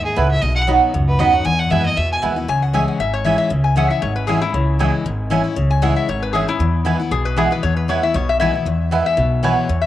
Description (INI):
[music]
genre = bluegrass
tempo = 233 BPM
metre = 4/4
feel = swing 55% on 8ths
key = unclear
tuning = A4 = 440 Hz
[part]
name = clear fiddle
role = melody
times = 0.0-2.2 s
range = G#4 to G#5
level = -21 LUFS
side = equal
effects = cassette tape
[part]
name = picked steel-string acoustic guitar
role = accompaniment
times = 0.0-9.9 s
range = E2 to F#4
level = -21 LUFS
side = left 4 dB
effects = cassette tape
[part]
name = upright bass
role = bass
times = 0.0-9.9 s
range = G#1 to F#2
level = -20 LUFS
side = equal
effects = none
[part]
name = mandolin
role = stabs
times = 0.2-9.5 s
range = B3 to B5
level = -21 LUFS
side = right 6 dB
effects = cassette tape
[part]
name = lap resonator guitar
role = second line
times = 2.5-9.9 s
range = E4 to G#5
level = -21 LUFS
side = left 5 dB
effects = cassette tape
[sound]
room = moderate spring reverb, RT60 2.6 s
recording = home recording on cassette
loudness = -15 LUFS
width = side -13 dB against mid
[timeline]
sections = 0.0-2.5 A section; 2.5-9.9 A section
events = fiddle solo 0.0-2.5; resonator guitar played with a steel bar solo 2.5-9.9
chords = 0.4 B; 1.5 E; 2.5 C#m; 6.6 E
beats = 0.17 | 0.42 0.68 0.94 1.20 | 1.45 1.71 1.97 2.23 | 2.48 2.74 3.00 3.25 | 3.51 3.77 4.03 4.29 | 4.54 4.80 5.06 5.32 | 5.57 5.83 6.09 6.34 | 6.60 6.86 7.12 7.38 | 7.63 7.89 8.15 8.40 | 8.66 8.92 9.18 9.44 | 9.69